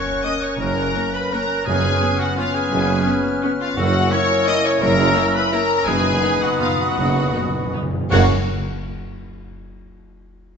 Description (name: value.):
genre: classical, orchestral ballroom waltz.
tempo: 152-183 BPM.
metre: 3/4.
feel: rubato.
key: F# major.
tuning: A4 = 440 Hz.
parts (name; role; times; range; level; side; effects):
rich studio violin section; melody; 0.0-8.3 s; E#5 to D#6; -26 LUFS; left 5 dB; none.
bright flute section; second line; 0.0-8.3 s; C#6 to F#6; -28 LUFS; left 2 dB; none.
clear oboe; second line; 0.0-8.3 s; E#4 to F#5; -28 LUFS; equal; none.
dark clarinet; second line; 0.0-8.3 s; A#4 to C#5; -29 LUFS; left 3 dB; none.
rich studio violin section; second line; 0.0-8.3 s; E#4 to D#5; -29 LUFS; left 1 dB; none.
mellow bassoon; accompaniment; 0.0-8.3 s; A#3 to C#4; -27 LUFS; right 1 dB; none.
mellow French horn section; sustained chords; 0.0-8.2 s; A#3 to E4; -27 LUFS; left 4 dB; none.
dark trumpet section; stabs; 0.0-8.3 s; E#4 to F#5; -26 LUFS; equal; none.
bright symphonic viola section; accompaniment; 0.2-8.3 s; A#3 to F#4; -28 LUFS; equal; none.
clear symphonic cello section; bass; 0.6-8.3 s; F#2; -28 LUFS; right 3 dB; none.
rich symphonic double bass section; bass; 0.6-8.3 s; F#1; -26 LUFS; right 4 dB; none.
warm tuba; bass; 0.6-8.3 s; F#1; -27 LUFS; right 4 dB; none.
timpani; percussion; 1.7-8.3 s; F#2; -27 LUFS; equal; none.
clash cymbals and concert bass drum; percussion; 8.1-8.8 s; none; -32 LUFS; left 1 dB; none.
room: wet scoring stage reverb, RT60 1.8 s.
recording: nothing above 7.9 kHz.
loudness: -16 LUFS.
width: side -6 dB against mid.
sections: 0.0-8.1 A section; 8.1-9.2 B section.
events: timpani fill 5.9-8.1; band accent 8.1-8.5.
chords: 0.0 F#; 1.7 C#7/F#; 3.8 F#7; 5.9 B/F#; 8.1 F#.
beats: 0.24 | 0.59 0.95 1.33 | 1.67 2.02 2.38 | 2.72 3.07 3.44 | 3.78 4.13 4.48 | 4.83 5.17 5.53 | 5.88 6.24 6.62 | 6.98 7.34 7.74 | 8.11 8.47.